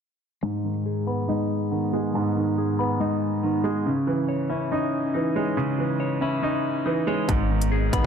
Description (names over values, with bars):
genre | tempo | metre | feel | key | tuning
hip hop, drill | 140 BPM | 4/4 | half-time | G# minor | A4 = 438 Hz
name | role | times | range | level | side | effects
clear concert grand piano | accompaniment | 0.4-8.1 s | G#2 to D#4 | -24 LUFS | right 3 dB | low-pass filter
clean electric guitar | arpeggios | 0.4-8.1 s | G#3 to B5 | -27 LUFS | left 7 dB | low-pass filter, ping-pong delay
ethereal airy pad | sustained chords | 7.5-8.1 s | B3 to D#5 | -32 LUFS | right 2 dB | ensemble chorus, built-in reverb
distorted 808-style bass | bass | 7.3-8.0 s | G#1 | -24 LUFS | equal | distortion
drill drum kit | drums | 7.3-8.0 s | hi-hat, kick drum | -24 LUFS | equal | none
room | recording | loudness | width
light reverb | dark, warm production | -22 LUFS | side -7 dB against mid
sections
0.4-7.3 A section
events
filter sweep 0.4-7.3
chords
0.4 G#m; 3.9 C#madd9; 7.3 G#m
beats
| 0.43 0.86 1.29 1.72 | 2.14 2.57 3.00 3.43 | 3.86 4.29 4.72 5.14 | 5.57 6.00 6.43 6.86 | 7.29 7.72